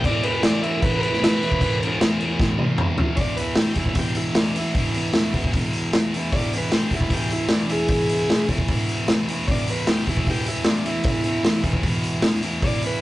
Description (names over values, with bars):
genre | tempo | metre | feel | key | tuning
garage rock duo or trio | 152 BPM | 4/4 | straight | unclear | A4 = 441 Hz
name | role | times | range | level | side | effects
overdriven combo organ | melody | 0.0-13.0 s | D4 to E5 | -27 LUFS | right 1 dB | none
thick fuzz guitar | riff | 0.0-13.0 s | E2 to E3 | -24 LUFS | equal | distortion
vintage drum kit | drums | 0.0-12.9 s | crash cymbal, hi-hat, kick drum, snare drum, toms | -21 LUFS | equal | none
room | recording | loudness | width
moderate studio reverb, RT60 0.5 s | rough rehearsal-room recording, warm saturation, nothing above 10.9 kHz | -19 LUFS | side -16 dB against mid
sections
0.0-3.2 A section; 3.2-13.0 B section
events
transistor combo organ solo 0.0-3.2; drum fill 2.4-3.2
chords
0.0 E5